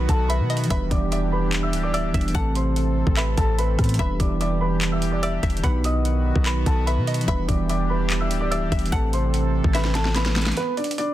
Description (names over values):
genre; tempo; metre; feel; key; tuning
hip hop, trap; 146 BPM; 4/4; half-time; E minor; A4 = 441 Hz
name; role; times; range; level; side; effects
dark baby grand piano; melody; 0.0-11.1 s; B3 to E6; -28 LUFS; equal; low-pass filter, ping-pong delay
mellow tine electric piano; accompaniment; 0.0-10.6 s; D#3 to D#4; -28 LUFS; moving between right 1 dB and right 9 dB; auto-pan, low-pass filter
sweeping resonant pad; sustained chords; 0.0-10.6 s; C3 to A4; -31 LUFS; equal; chorus
warm 808-style bass; bass; 0.0-10.5 s; D1 to B2; -24 LUFS; equal; none
trap drum kit; drums; 0.1-11.1 s; handclaps, hi-hat, kick drum, rim click, snare drum; -25 LUFS; equal; none
string-like resonator pluck; second line; 0.3-10.5 s; D5 to F#5; -34 LUFS; left 2 dB; chorus, ping-pong delay
room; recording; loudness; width
digital ambience; dense, heavily limited modern master; -20 LUFS; side -14 dB against mid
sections
0.0-10.6 A section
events
drum fill 9.7-10.6; break 10.6-11.1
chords
0.0 B; 0.7 Em7; 2.3 Amadd9; 4.0 Em7; 5.6 B; 7.3 Em7; 8.9 Amadd9; 10.6 N.C.